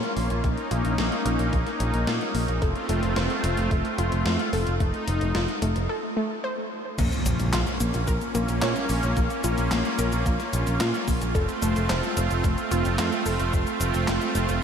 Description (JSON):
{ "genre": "synthwave", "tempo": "110 BPM", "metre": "4/4", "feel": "straight", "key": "Bb harmonic minor", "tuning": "A4 = 439 Hz", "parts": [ { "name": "brassy analog pad", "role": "sustained chords", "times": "0.0-14.6 s", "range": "A3 to F4", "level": "-28 LUFS", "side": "right 1 dB", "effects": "chorus, sidechain pumping" }, { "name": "wide unison pluck", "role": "arpeggios", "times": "0.0-14.5 s", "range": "A3 to Db5", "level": "-31 LUFS", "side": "left 1 dB", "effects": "analog delay" }, { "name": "gated 80s digital drum machine", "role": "drums", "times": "0.0-14.6 s", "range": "crash cymbal, handclaps, hi-hat, shaker, snare drum", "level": "-32 LUFS", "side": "left 1 dB", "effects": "gated reverb, gated reverb snare, overdrive" }, { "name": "picked electric bass", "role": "bass", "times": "0.2-14.6 s", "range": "F1 to Bb2", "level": "-26 LUFS", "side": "equal", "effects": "none" }, { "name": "electronic kick drum", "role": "drums", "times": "0.4-13.6 s", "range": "none", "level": "-26 LUFS", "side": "equal", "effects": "overdrive" }, { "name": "impact", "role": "sound effects", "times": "7.0-9.2 s", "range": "none", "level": "-33 LUFS", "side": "equal", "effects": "none" } ], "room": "moderate huge ambient reverb, RT60 7.2 s", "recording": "dreamy mix soaked in reverb", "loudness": "-22 LUFS", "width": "side -7 dB against mid", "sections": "0.0-7.0 A section; 7.0-14.6 B section", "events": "break 5.9-7.0; impact 7.0-9.2", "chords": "0.0 Bbm; 2.6 F; 7.0 Bbm; 11.3 F", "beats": "| 0.44 0.99 1.53 2.08 | 2.62 3.17 3.71 4.26 | 4.80 5.35 5.89 6.44 | 6.99 7.53 8.08 8.62 | 9.17 9.71 10.26 10.80 | 11.35 11.89 12.44 12.99 | 13.53 14.08 14.62" }